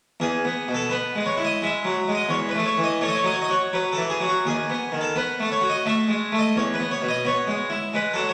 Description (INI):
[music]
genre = classical, baroque-style suite movement for harpsichord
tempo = 85 BPM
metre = 3/4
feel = rubato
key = E major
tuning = A4 = 440 Hz
[part]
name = harpsichord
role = solo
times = 0.2-8.3 s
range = D#2 to E5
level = -23 LUFS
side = equal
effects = none
[sound]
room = wet scoring stage reverb, RT60 1.6 s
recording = none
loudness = -23 LUFS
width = mono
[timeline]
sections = 0.2-8.3 A section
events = none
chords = 0.2 E; 4.4 B7/D#; 6.5 E